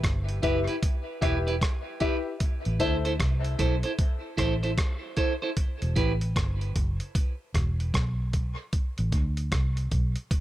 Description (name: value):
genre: dub reggae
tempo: 76 BPM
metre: 4/4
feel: swing 64% on 16ths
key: E minor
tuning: A4 = 439 Hz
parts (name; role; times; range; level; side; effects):
- vintage muted fingered electric bass; bass; 0.0-10.1 s; E1 to D2; -27 LUFS; equal; none
- dusty soul sampler-style drum kit; drums; 0.0-10.4 s; hi-hat, kick drum, rim click; -27 LUFS; equal; none
- clean electric guitar; accompaniment; 0.4-6.1 s; E4 to C5; -31 LUFS; right 3 dB; dub echo
- warm grand piano; stabs; 0.4-3.1 s; E4 to E5; -34 LUFS; left 6 dB; dub echo
room: little or no reverb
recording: none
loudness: -25 LUFS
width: side -14 dB against mid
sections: 0.0-10.4 A section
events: none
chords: 0.0 Em; 2.4 Am; 5.6 Em; 8.7 Am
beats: 0.04 0.83 1.62 | 2.41 3.20 3.99 4.78 | 5.57 6.36 7.15 7.94 | 8.73 9.52 10.31